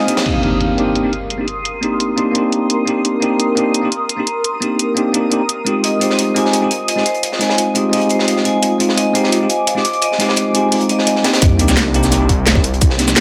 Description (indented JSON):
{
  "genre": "liquid drum and bass",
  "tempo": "172 BPM",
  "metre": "4/4",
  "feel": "straight",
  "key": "C minor",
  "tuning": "A4 = 440 Hz",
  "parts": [
    { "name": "bell-like tine electric piano", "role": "accompaniment", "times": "0.0-13.2 s", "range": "Ab3 to G4", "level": "-19 LUFS", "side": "equal", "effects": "low-pass filter, dub echo" },
    { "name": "shimmering ambient pad", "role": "sustained chords", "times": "0.0-11.4 s", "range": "Ab3 to Eb6", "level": "-26 LUFS", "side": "equal", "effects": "chorus, built-in reverb, phaser" },
    { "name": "vibraphone with medium hard mallets", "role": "arpeggios", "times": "0.0-0.3, 5.8-11.4 s", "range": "C5 to Ab5", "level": "-22 LUFS", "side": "equal", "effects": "digital delay" },
    { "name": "crunchy breakbeat drum kit", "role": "drums", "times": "0.1-0.3, 5.8-13.2 s", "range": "hi-hat, snare drum", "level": "-24 LUFS", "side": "equal", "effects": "high-pass filter on hats, high-pass filter on snare, high-pass filter on room" },
    { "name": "garage drum kit", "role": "drums", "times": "0.1-13.2 s", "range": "cabasa, crash cymbal, hi-hat, snare drum", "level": "-20 LUFS", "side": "equal", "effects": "low-pass filter on hats, low-pass filter on snare, low-pass filter on perc, low-pass filter on cymbals, low-pass filter on room" },
    { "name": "impact and sub drop", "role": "sound effects", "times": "0.3-1.7, 11.4-12.8 s", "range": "none", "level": "-24 LUFS", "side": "equal", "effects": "none" },
    { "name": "swelling detuned saw bass", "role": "bass", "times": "11.4-13.2 s", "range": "C2", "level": "-20 LUFS", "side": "equal", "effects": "none" },
    { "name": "electronic kick drum", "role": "drums", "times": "11.4-12.9 s", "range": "none", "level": "-16 LUFS", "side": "equal", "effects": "none" }
  ],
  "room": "light reverb",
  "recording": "none",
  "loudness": "-16 LUFS",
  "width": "mono",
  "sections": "0.3-11.4 A section; 11.4-13.2 B section",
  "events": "break 0.0; impact 0.3-1.7, 11.4-12.8; drop 11.4-13.2",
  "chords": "0.3 Cm7; 5.7 Fm7; 11.4 Cm7"
}